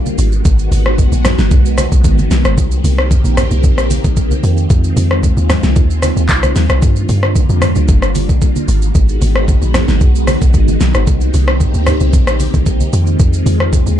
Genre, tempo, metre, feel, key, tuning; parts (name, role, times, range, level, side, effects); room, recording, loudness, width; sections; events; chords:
amapiano; 113 BPM; 4/4; straight; A4 = 440 Hz
phased string machine; sustained chords; 0.0-14.0 s; D3 to G4; -19 LUFS; equal; ensemble chorus, phaser, sidechain pumping
deep log drum bass; bass; 0.0-14.0 s; G1 to G2; -13 LUFS; equal
smooth R&B drum kit; drums; 0.1-14.0 s; handclaps, hi-hat, kick drum, rim click, shaker, snare drum; -14 LUFS; equal
congas; percussion; 0.1-14.0 s; -21 LUFS; right 2 dB
little or no reverb; dark, warm production, nothing above 10.9 kHz; -10 LUFS; side -11 dB against mid
0.0-14.0 A section
0.2 Abm7; 2.6 Cm7; 4.4 Fm7; 6.8 Gm7; 8.7 Abm7; 11.1 Cm7; 12.9 Fm7